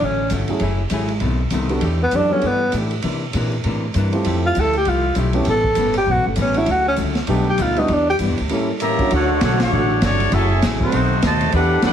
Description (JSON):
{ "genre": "jazz, big band swing", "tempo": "198 BPM", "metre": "4/4", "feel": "swing 61% on 8ths", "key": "D major", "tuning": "A4 = 440 Hz", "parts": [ { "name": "breathy tenor saxophone", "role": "melody", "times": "0.0-8.2 s", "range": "A3 to A4", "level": "-18 LUFS", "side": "equal", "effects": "none" }, { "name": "archtop guitar, miked and amplified", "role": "accompaniment", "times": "0.0-11.9 s", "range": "A2 to G#4", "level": "-26 LUFS", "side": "left 4 dB", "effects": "none" }, { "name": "upright bass", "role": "bass", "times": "0.0-11.9 s", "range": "F#1 to C3", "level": "-21 LUFS", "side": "equal", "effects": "none" }, { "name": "open jazz drum kit", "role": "drums", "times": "0.3-11.9 s", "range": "hi-hat, kick drum, ride cymbal, snare drum", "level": "-26 LUFS", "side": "right 2 dB", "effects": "none" }, { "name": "warm grand piano", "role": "accompaniment", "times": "0.5-9.1 s", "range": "F#3 to A4", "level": "-24 LUFS", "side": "right 2 dB", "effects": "none" }, { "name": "warm trumpet section", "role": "melody", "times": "8.8-11.9 s", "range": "A3 to Bb5", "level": "-20 LUFS", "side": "equal", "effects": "none" }, { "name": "mellow trombone section", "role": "second line", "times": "8.8-11.9 s", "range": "D#3 to G4", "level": "-23 LUFS", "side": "right 3 dB", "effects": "none" }, { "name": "warm trombone section", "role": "sustained chords", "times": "9.1-11.9 s", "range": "D3 to C#5", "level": "-27 LUFS", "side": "left 2 dB", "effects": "none" } ], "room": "light reverb", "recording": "heavily compressed radio sound, lossy compression artefacts", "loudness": "-16 LUFS", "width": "side -9 dB against mid", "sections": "0.0-9.1 A section; 9.1-11.9 B section", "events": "tenor saxophone solo 0.0-9.1; band accent 9.6", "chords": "0.0 Dmaj7; 0.6 F#m9; 1.2 B7b9; 1.8 Em11; 3.0 C9; 4.2 Fmaj9; 5.5 A9; 6.7 Dmaj7; 7.3 B7alt; 7.9 Em7; 8.5 A7b9; 9.1 Dmaj7; 10.3 F#m9; 10.9 B7b9", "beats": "0.00 0.31 | 0.61 0.91 1.22 1.52 | 1.82 2.12 2.43 2.73 | 3.03 3.34 3.64 3.94 | 4.25 4.55 4.85 5.16 | 5.46 5.76 6.07 6.37 | 6.68 6.98 7.28 7.59 | 7.89 8.20 8.50 8.80 | 9.11 9.41 9.71 10.02 | 10.32 10.62 10.92 11.23 | 11.53 11.83" }